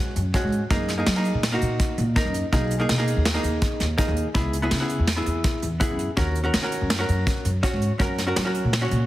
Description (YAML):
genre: progressive instrumental, band music in an uneven meter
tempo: 165 BPM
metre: 5/4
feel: straight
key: F# mixolydian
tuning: A4 = 440 Hz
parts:
  - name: hollow-body jazz guitar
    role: accompaniment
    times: 0.0-9.1 s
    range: G#3 to C#5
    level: -26 LUFS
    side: equal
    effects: none
  - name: upright bass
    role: bass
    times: 0.2-9.1 s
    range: B1 to F#3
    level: -24 LUFS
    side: equal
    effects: none
  - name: soft brush drum kit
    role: drums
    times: 0.2-9.0 s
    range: hi-hat, kick drum, snare drum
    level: -25 LUFS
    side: equal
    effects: none
room: light reverb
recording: heavily compressed radio sound, multiband compression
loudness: -21 LUFS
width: side -15 dB against mid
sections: 0.0-9.1 A section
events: none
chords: 0.0 N.C.; 0.7 F#add9; 2.5 B6; 4.4 C#m7; 6.2 D#m; 8.0 F#